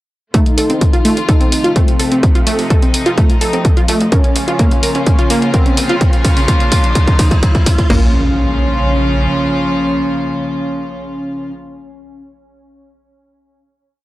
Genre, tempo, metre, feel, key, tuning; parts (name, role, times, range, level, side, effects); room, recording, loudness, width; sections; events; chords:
melodic techno; 127 BPM; 4/4; straight; Bb harmonic minor; A4 = 440 Hz
wide unison lead; melody; 0.3-11.5 s; C4 to Eb4; -20 LUFS; equal; sidechain pumping, tape echo
rich chamber string section; sustained chords; 0.3-11.5 s; C3 to F4; -20 LUFS; equal; sidechain pumping, low-pass filter
wide unison pluck; arpeggios; 0.3-8.1 s; A3 to Bb4; -17 LUFS; equal; sidechain pumping, analog delay
electronic kick drum; drums; 0.3-8.0 s; -12 LUFS; equal
punchy analog drum machine; drums; 0.3-8.0 s; crash cymbal, hi-hat; -22 LUFS; equal; sidechain pumping on hats, sidechain pumping on cymbals
riser and impact; sound effects; 3.3-11.6 s; -26 LUFS; equal
tight sequencer bass; bass; 0.6-9.3 s; Eb1 to Bb1; -19 LUFS; equal; sidechain pumping, high-pass filter
light reverb; dry, gritty hardware recording, cassette tape; -11 LUFS; side -17 dB against mid
0.3-7.9 build; 7.9-11.7 final chord
build-up 0.3-7.9; drum fill 4.1-7.9
0.3 F; 4.1 Bbm